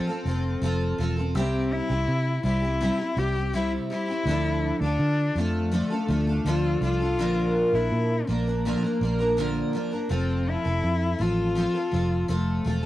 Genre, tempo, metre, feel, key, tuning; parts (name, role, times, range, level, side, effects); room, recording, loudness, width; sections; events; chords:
acoustic pop; 82 BPM; 4/4; straight; F major; A4 = 440 Hz
dark cello; melody; 0.0-12.9 s; A3 to G4; -28 LUFS; left 3 dB; cassette tape
picked steel-string acoustic guitar; accompaniment; 0.0-12.9 s; Bb2 to Bb4; -27 LUFS; equal; double-tracked left and right, cassette tape
vintage muted fingered electric bass; bass; 0.3-12.9 s; E1 to D3; -26 LUFS; right 1 dB
moderate studio reverb, RT60 0.6 s; home recording on cassette; -23 LUFS; side -15 dB against mid
0.0-12.9 A section
0.0 F; 1.4 C; 4.3 Dm; 7.2 Bb; 10.1 F